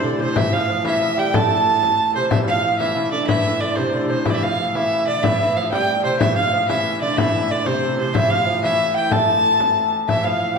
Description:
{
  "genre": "medieval dance",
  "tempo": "123 BPM (dotted quarters)",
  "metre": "6/8",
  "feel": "straight",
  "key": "A minor",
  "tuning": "A4 = 441 Hz",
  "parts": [
    { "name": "clear fiddle", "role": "melody", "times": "0.0-10.6 s", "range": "C5 to A5", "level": "-20 LUFS", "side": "right 2 dB", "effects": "none" },
    { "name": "bright tenor recorder", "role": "second line", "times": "0.0-10.6 s", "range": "C5 to A5", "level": "-24 LUFS", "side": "left 3 dB", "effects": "none" },
    { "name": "lute", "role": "second line", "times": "0.0-10.6 s", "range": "C3 to A3", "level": "-25 LUFS", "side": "right 2 dB", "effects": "none" },
    { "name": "warm hurdy-gurdy", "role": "drone", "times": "0.0-10.6 s", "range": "A2 to E3", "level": "-28 LUFS", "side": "left 1 dB", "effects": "none" },
    { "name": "frame drum", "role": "percussion", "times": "0.0-10.3 s", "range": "none", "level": "-24 LUFS", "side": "left 3 dB", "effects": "none" }
  ],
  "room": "wet recital hall reverb, RT60 1.6 s",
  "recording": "recorded in a church or concert hall",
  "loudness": "-16 LUFS",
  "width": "side -5 dB against mid",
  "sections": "0.0-2.3 A section; 2.3-10.1 A section",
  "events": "none",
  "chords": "none"
}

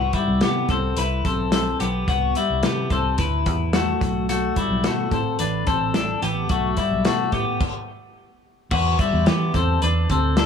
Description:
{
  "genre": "jangly indie pop",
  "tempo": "108 BPM",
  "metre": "4/4",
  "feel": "straight",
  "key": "E minor",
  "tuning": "A4 = 440 Hz",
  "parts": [
    { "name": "twelve-string electric guitar", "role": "arpeggios", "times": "0.0-10.5 s", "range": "G3 to B4", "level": "-22 LUFS", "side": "left 4 dB", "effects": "tape echo" },
    { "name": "vintage muted fingered electric bass", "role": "bass", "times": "0.0-10.5 s", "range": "A1 to E3", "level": "-24 LUFS", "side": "right 1 dB", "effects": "none" },
    { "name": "modern studio drum kit", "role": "drums", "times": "0.1-10.5 s", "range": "crash cymbal, hi-hat, kick drum, snare drum", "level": "-24 LUFS", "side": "left 1 dB", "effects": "tape echo" }
  ],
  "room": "light reverb, small room ambience",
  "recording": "echo-heavy mix",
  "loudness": "-19 LUFS",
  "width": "side -7 dB against mid",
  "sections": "0.0-8.7 A section; 8.7-10.5 A section",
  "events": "stop 7.6-8.7",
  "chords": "0.0 Cmaj7; 4.0 Bm7; 8.7 Em7"
}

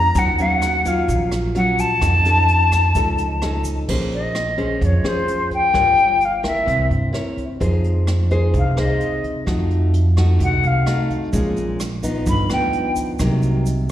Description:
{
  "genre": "bossa nova",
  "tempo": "129 BPM",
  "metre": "4/4",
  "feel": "straight",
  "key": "Bb minor",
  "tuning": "A4 = 441 Hz",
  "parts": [
    { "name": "silver concert flute", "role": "melody", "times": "0.0-12.9 s", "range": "C5 to B5", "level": "-19 LUFS", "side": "left 2 dB", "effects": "slapback echo" },
    { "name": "nylon-string guitar", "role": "accompaniment", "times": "0.0-13.9 s", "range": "G2 to Db5", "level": "-23 LUFS", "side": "left 1 dB", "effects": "slapback echo" },
    { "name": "upright bass", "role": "bass", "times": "0.0-13.9 s", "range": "G1 to G2", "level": "-19 LUFS", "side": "right 1 dB", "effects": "none" },
    { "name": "jazz brush drum kit", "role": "drums", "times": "0.1-13.8 s", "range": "crash cymbal, hi-hat, kick drum, rim click", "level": "-27 LUFS", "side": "equal", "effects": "none" },
    { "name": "tube shaker", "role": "percussion", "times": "0.2-3.9, 11.3-13.9 s", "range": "none", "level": "-39 LUFS", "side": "right 6 dB", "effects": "none" }
  ],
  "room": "light reverb",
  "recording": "live gig heard through the venue's PA, recital hall reverb",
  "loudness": "-16 LUFS",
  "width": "side -12 dB against mid",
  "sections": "0.0-3.9 A section; 3.9-13.9 B section",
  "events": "flute solo 3.9-13.9",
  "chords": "0.2 Ebm9; 2.0 Faug7; 3.9 Bbm9; 5.7 Gm7b5; 6.7 C7b9; 7.6 Fm7; 9.5 F7b9; 11.3 Bbm7; 12.3 G7b13; 13.2 Cm7b5"
}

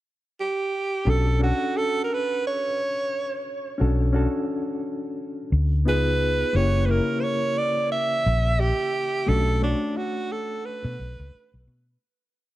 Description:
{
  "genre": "lush 1970s-style soul",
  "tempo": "88 BPM",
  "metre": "4/4",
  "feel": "swing 58% on 16ths",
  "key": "B minor",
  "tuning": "A4 = 438 Hz",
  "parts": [
    { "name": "warm alto saxophone", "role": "melody", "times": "0.4-11.7 s", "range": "D4 to E5", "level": "-25 LUFS", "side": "right 3 dB", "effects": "analog delay" },
    { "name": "reed electric piano", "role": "accompaniment", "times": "1.1-12.0 s", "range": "C#3 to C#5", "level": "-28 LUFS", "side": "left 2 dB", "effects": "fast tremolo" },
    { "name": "vintage muted fingered electric bass", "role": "bass", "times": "1.1-12.0 s", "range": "F#1 to B2", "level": "-22 LUFS", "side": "equal", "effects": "none" }
  ],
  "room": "studio reverb",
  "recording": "none",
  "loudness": "-22 LUFS",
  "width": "side -15 dB against mid",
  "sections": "0.0-1.1 pickup bar; 1.1-12.0 A section",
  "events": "fade-out 9.3-12.0",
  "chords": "0.0 N.C.; 1.1 Bm9; 5.9 C#9; 6.5 F#7b9; 9.3 Bm9"
}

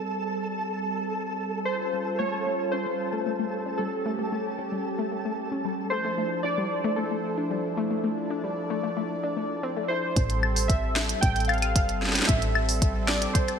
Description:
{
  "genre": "IDM",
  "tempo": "113 BPM",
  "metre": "4/4",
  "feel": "straight",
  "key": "A minor",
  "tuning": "A4 = 436 Hz",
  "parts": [
    { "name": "warm analog pad", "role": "sustained chords", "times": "0.0-13.6 s", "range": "F3 to D5", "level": "-32 LUFS", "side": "right 2 dB", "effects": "chorus" },
    { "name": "flickering grainy texture", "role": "texture", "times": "0.0-10.2 s", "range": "A4 to A5", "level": "-35 LUFS", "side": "right 1 dB", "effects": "built-in reverb" },
    { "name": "warbly lo-fi synth keys", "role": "melody", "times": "1.7-13.6 s", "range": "A4 to G5", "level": "-30 LUFS", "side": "equal", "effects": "chorus, ping-pong delay" },
    { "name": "warbly dusty pluck", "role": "arpeggios", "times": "1.8-10.0 s", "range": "G3 to E4", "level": "-31 LUFS", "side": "left 4 dB", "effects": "chorus, digital delay" },
    { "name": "woody FM bass", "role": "bass", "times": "10.2-13.3 s", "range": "G1 to A1", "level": "-28 LUFS", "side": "equal", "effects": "tube saturation" },
    { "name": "electronic kick drum", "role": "drums", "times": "10.2-13.5 s", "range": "none", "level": "-24 LUFS", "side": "equal", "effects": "small room ambience" },
    { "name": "glitchy drum kit", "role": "drums", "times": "10.2-13.6 s", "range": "claves, hi-hat, snare drum", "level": "-27 LUFS", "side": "left 1 dB", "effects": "small room ambience, gated reverb" }
  ],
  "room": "moderate lush hall reverb, RT60 1.8 s, digital ambience",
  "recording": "bright 1980s-style digital production",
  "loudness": "-25 LUFS",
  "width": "side -7 dB against mid",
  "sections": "0.0-10.2 A section; 10.2-13.6 B section",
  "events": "filter sweep on analog synth pad 0.0-10.2",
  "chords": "0.0 Am7; 1.7 A7alt; 5.9 Dm9; 10.2 Am7"
}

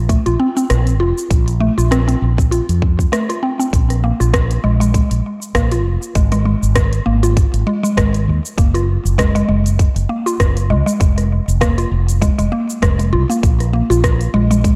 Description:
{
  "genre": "organic downtempo",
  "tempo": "99 BPM",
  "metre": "4/4",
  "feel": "swing 56% on 16ths",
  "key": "unclear",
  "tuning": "A4 = 437 Hz",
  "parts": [
    { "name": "mallet-like synth pluck", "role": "arpeggios", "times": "0.0-14.8 s", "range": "Ab3 to F4", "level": "-21 LUFS", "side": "equal", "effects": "chorus, phaser, vintage 12-bit sampler grit, delay" },
    { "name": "mellow fretless electric bass", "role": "bass", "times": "0.0-14.7 s", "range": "F1 to F2", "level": "-18 LUFS", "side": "equal", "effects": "sidechain pumping" },
    { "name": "electronic kick drum", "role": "drums", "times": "0.1-14.8 s", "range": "none", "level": "-18 LUFS", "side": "equal", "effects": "none" },
    { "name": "organic electronic drum kit", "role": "drums", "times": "0.1-14.8 s", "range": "hi-hat, rim click, shaker", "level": "-26 LUFS", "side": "equal", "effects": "none" }
  ],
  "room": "light reverb",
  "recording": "dark, warm production",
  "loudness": "-15 LUFS",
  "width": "mono",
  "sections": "0.0-3.7 A section; 3.7-14.8 B section",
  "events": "none",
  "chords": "0.0 F; 3.7 Bb5; 6.2 N.C.; 8.6 Gb; 11.0 Fmadd11; 13.4 Bb5"
}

